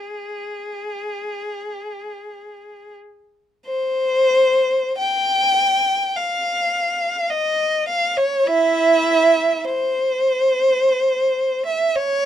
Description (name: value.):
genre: classical, free, expressive piece for unaccompanied violin.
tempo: 36-54 BPM.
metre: 4/4.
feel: rubato.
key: unclear.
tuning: A4 = 439 Hz.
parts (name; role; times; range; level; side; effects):
rich violin; solo; 0.0-12.3 s; E4 to G5; -17 LUFS; equal; none.
room: light reverb.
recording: dark, warm production.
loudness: -16 LUFS.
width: side -10 dB against mid.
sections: 0.0-3.7 A section; 3.7-12.3 A section.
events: none.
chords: none.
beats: 0.84 2.19 | 3.65 4.98 6.16 7.30 | 8.47 9.64 10.77 11.95.